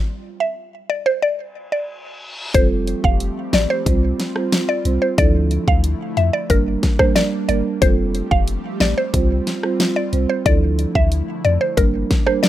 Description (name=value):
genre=dancehall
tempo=91 BPM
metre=4/4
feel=straight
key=unclear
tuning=A4 = 440 Hz
part: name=mallet-like synth pluck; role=melody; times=0.4-12.5 s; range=Bb4 to F5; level=-20 LUFS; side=equal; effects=chorus
part: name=reverse cymbal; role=sound effects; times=1.7-2.5 s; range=none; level=-33 LUFS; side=left 2 dB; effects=none
part: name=marimba with soft mallets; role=accompaniment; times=2.5-12.5 s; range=F3 to C5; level=-23 LUFS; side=right 4 dB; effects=none
part: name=airy breathy pad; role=sustained chords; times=2.5-12.5 s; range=D3 to G4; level=-30 LUFS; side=equal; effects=chorus, sidechain pumping
part: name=punchy sub bass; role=bass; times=2.5-12.0 s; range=F1 to F2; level=-20 LUFS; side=left 1 dB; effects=none
part: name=pop drum kit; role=drums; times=2.5-12.5 s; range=hi-hat, kick drum, rim click, snare drum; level=-18 LUFS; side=left 1 dB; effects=none
room=little or no reverb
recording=rough home demo mix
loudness=-16 LUFS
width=side -13 dB against mid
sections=0.0-2.5 A section; 2.5-12.5 B section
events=stop 0.0-2.5; reverse cymbal 1.7-2.5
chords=0.0 N.C.; 2.5 Fadd9; 3.9 Csus4; 5.2 Dmadd9; 6.5 Gm; 7.8 Fadd9; 9.1 Csus4; 10.5 Dmadd9; 11.8 Gm